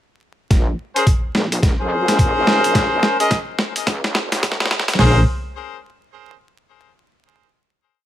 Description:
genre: glitch hop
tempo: 107 BPM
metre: 4/4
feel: swing 61% on 16ths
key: Bb minor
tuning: A4 = 443 Hz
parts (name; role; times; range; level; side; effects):
- wobble bass; bass; 0.5-5.3 s; Bb1 to F2; -21 LUFS; equal; chorus, high-pass filter
- boom bap sampler-style drum kit; drums; 0.5-5.2 s; hi-hat, kick drum, snare drum, toms; -17 LUFS; equal; small room ambience
- boom bap sampler-style drum kit; drums; 0.5-5.0 s; hi-hat, snare drum; -20 LUFS; equal; small room ambience
- bright horn section; stabs; 1.0-5.2 s; Db4 to Eb5; -19 LUFS; left 1 dB; sidechain pumping, low-pass filter, ping-pong delay
room: light reverb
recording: vinyl crackle, high-pass filter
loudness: -15 LUFS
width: side -12 dB against mid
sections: 0.5-5.0 build; 5.0-7.2 final chord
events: build-up 0.5-5.0; drum fill 0.5-5.0; filter sweep 0.5-5.0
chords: 0.5 Bbm9

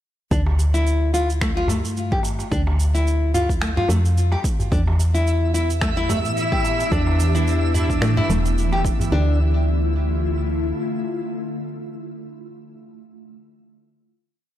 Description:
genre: organic downtempo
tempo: 109 BPM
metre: 4/4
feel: swing 56% on 16ths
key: D dorian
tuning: A4 = 441 Hz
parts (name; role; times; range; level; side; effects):
- nylon-string guitar; arpeggios; 0.3-9.4 s; A3 to G4; -25 LUFS; left 2 dB; ping-pong delay
- woody FM bass; bass; 0.3-10.7 s; E1 to A2; -20 LUFS; equal; tube saturation, sidechain pumping
- electronic kick drum; drums; 0.3-9.0 s; none; -24 LUFS; equal; overdrive
- electronic shaker and finger snaps; drums; 0.3-9.1 s; none; -31 LUFS; right 2 dB; soft clipping on snare
- darbuka; percussion; 0.5-9.1 s; none; -30 LUFS; right 1 dB; none
- ethereal airy pad; sustained chords; 5.4-12.1 s; D3 to G4; -27 LUFS; equal; ensemble chorus, built-in reverb, phaser, sidechain pumping
- twinkling granular texture; texture; 5.3-9.1 s; E5; -31 LUFS; right 4 dB; built-in reverb
- rich cello; melody; 6.4-8.5 s; D4 to E4; -27 LUFS; equal; ping-pong delay
room: light reverb, studio reverb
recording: blown-out, overdriven recording, overdrive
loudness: -18 LUFS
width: side -12 dB against mid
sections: 0.3-9.1 groove; 9.1-11.3 final chord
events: none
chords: 0.3 Dm; 4.7 Em7; 9.1 Dm

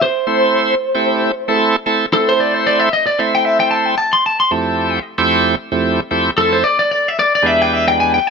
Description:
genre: blues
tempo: 113 BPM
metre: 4/4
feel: swing 56% on 16ths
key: A minor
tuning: A4 = 439 Hz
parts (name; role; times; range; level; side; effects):
- lightly driven lead guitar; melody; 0.0-8.3 s; A4 to C6; -14 LUFS; left 2 dB; none
- bright tonewheel organ; accompaniment; 0.3-8.2 s; E2 to C5; -16 LUFS; right 2 dB; slow rotary speaker, overdrive
room: light reverb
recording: none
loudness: -12 LUFS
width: side -5 dB against mid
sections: 0.0-8.3 A section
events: lead electric guitar solo 0.0-8.3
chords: 0.0 Am; 4.5 Fmaj7; 6.6 E7#9

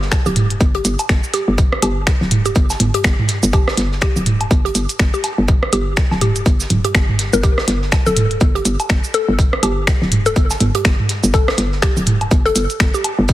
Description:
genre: minimal techno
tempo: 123 BPM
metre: 4/4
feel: swing 59% on 16ths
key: unclear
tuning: A4 = 440 Hz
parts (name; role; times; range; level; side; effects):
- hollow knocking FM bass; bass; 0.0-13.3 s; D1 to G1; -19 LUFS; equal; tube saturation, sidechain pumping
- big rock drum kit; drums; 0.0-13.3 s; hi-hat, shaker, snare drum; -30 LUFS; right 3 dB; sidechain pumping on hats, high-pass filter on hats, high-pass filter on snare, sidechain pumping on perc, high-pass filter on perc, high-pass filter on room
- electronic kick drum; drums; 0.1-13.3 s; none; -15 LUFS; equal; none
- minimal click drum kit; drums; 0.1-13.2 s; finger snaps, hi-hat, shaker; -21 LUFS; left 1 dB; none
- booming analog drum machine; percussion; 0.1-13.2 s; rim click, toms, woodblock; -19 LUFS; right 2 dB; none
- mallet-like synth pluck; riff; 0.3-13.0 s; G4 to Bb4; -22 LUFS; left 1 dB; chorus, sidechain pumping, dub echo
room: light reverb, digital ambience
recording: heavily compressed radio sound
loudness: -13 LUFS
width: side -15 dB against mid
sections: 0.0-13.3 A section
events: none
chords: 0.0 G5

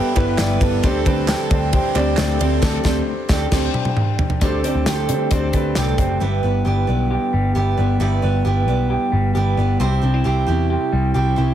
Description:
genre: jangly indie pop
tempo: 134 BPM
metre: 4/4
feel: straight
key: G major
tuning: A4 = 440 Hz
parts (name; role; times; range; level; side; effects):
- dark upright piano; accompaniment; 0.0-6.2 s; D4 to D5; -25 LUFS; left 4 dB; none
- picked steel-string acoustic guitar; accompaniment; 0.0-11.5 s; C3 to D5; -25 LUFS; right 8 dB; none
- electric guitar through a small old amp; arpeggios; 0.0-11.5 s; G2 to G4; -22 LUFS; equal; none
- vintage muted picked electric bass; bass; 0.2-11.5 s; F#1 to D3; -20 LUFS; equal; none
- modern studio drum kit; drums; 0.2-6.1 s; crash cymbal, hi-hat, kick drum, ride cymbal, snare drum, toms; -21 LUFS; equal; none
- group handclap; percussion; 0.2-2.3 s; none; -33 LUFS; right 8 dB; none
room: studio reverb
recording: heavily compressed radio sound, faint mains hum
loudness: -16 LUFS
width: side -10 dB against mid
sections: 0.0-4.4 A section; 4.4-6.2 B section; 6.2-11.5 C section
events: band accent 2.6-4.4; drum fill 3.5-4.4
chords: 0.0 G6; 0.8 D7sus4; 6.2 G6; 9.8 C

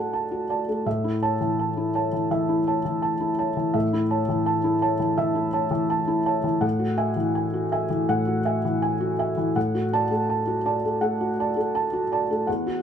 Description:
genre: neoclassical minimalist piano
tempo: 82 BPM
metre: 4/4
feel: rubato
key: A major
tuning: A4 = 440 Hz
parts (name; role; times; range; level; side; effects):
- felt-muted upright piano; solo; 0.0-12.8 s; E2 to A5; -22 LUFS; equal; none
room: moderate stone room reverb, RT60 1.2 s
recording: band playing live in one room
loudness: -22 LUFS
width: side -8 dB against mid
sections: 0.0-12.8 A section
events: none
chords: 0.0 D/A; 0.9 A; 6.6 Eadd9/A; 9.6 D/A

